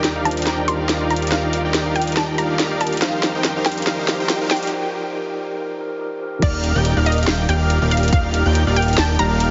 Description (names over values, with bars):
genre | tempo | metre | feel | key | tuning
future bass | 141 BPM | 4/4 | swing 56% on 16ths, half-time | unclear | A4 = 440 Hz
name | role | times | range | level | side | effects
mellow tine electric piano | accompaniment | 0.0-6.4 s | Eb3 to D5 | -28 LUFS | equal | sidechain pumping, digital delay
airy breathy pad | sustained chords | 0.0-9.5 s | Eb2 to Bb4 | -33 LUFS | equal | chorus, sidechain pumping
dense compressed supersaw | riff | 0.0-9.5 s | Eb4 to G5 | -26 LUFS | equal | sidechain pumping, low-pass filter, digital delay
trap drum kit | drums | 0.0-9.5 s | crash cymbal, hi-hat, snare drum | -26 LUFS | equal | high-pass filter on snare, high-pass filter on hats, high-pass filter on cymbals
riser | sound effects | 0.0-4.7 s | none | -39 LUFS | equal | none
unison pluck | melody | 0.3-9.5 s | D5 to C6 | -28 LUFS | equal | sidechain pumping, digital delay
airy dreamy lead | arpeggios | 6.4-9.5 s | F6 to G6 | -30 LUFS | equal | chorus, vintage 12-bit sampler grit, sidechain pumping
fat analog bass | bass | 6.4-9.5 s | Eb1 | -20 LUFS | equal | sidechain pumping
electronic kick drum | drums | 6.4-8.2 s | none | -19 LUFS | equal | none
room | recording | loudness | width
light reverb | heavily compressed radio sound, multiband compression, high-pass filter, nothing above 7.6 kHz | -19 LUFS | mono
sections
0.0-6.4 A section; 6.4-9.5 B section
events
build-up 0.0-6.4; drum fill 0.0-4.7; filter sweep on synth pluck 0.0-6.4; filter sweep on analog synth pad 0.0-6.4; break 4.7-6.4; drop 6.4-9.5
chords
0.0 Ebmaj9; 3.0 F9sus4; 6.2 Ebadd9; 6.4 Ebmaj9